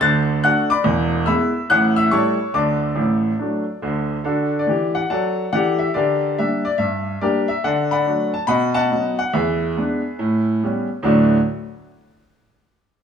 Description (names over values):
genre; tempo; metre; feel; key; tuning
jazz, stride piano; 141 BPM; 4/4; swing 64% on 8ths; D major; A4 = 441 Hz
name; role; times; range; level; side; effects
bright grand piano; solo; 0.0-11.4 s; E1 to A6; -17 LUFS; equal; none
room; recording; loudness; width
wet echo chamber reverb, RT60 1.4 s; none; -17 LUFS; side -7 dB against mid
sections
0.0-4.2 A section; 4.2-11.0 B section; 11.0-12.7 C section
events
none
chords
0.0 D; 0.8 E7; 1.7 A7; 2.5 D; 5.9 Gm/D; 7.6 D; 8.5 B7; 9.3 E7; 10.2 A9; 11.0 D